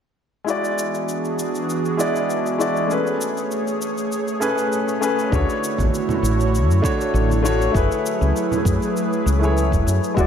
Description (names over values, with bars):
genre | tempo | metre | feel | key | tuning
sunset chillout | 99 BPM | 4/4 | straight | unclear | A4 = 440 Hz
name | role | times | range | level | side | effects
warm baby grand piano | accompaniment | 0.4-10.3 s | G#3 to D5 | -22 LUFS | moving between left 5 dB and right 3 dB | auto-pan, low-pass filter, ping-pong delay
airy breathy pad | sustained chords | 0.5-10.3 s | D3 to C#5 | -23 LUFS | right 2 dB | chorus
shaker | drums | 0.5-10.3 s | none | -35 LUFS | left 3 dB | studio ambience
woody fretless electric bass | bass | 5.3-10.3 s | E1 to F#2 | -19 LUFS | equal | analog chorus
electronic kick drum | drums | 5.3-10.3 s | none | -23 LUFS | equal | studio ambience
congas | percussion | 5.8-8.6 s | none | -28 LUFS | right 3 dB | none
Celtic harp | arpeggios | 10.2-10.3 s | F#4 | -22 LUFS | right 2 dB | none
room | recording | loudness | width
wet lush hall reverb, RT60 1.6 s, small room reverb | dreamy mix soaked in reverb | -18 LUFS | side -8 dB against mid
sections
0.5-10.2 A section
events
none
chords
0.5 E9; 2.9 Amaj9; 5.3 Dmaj7; 7.7 F#m11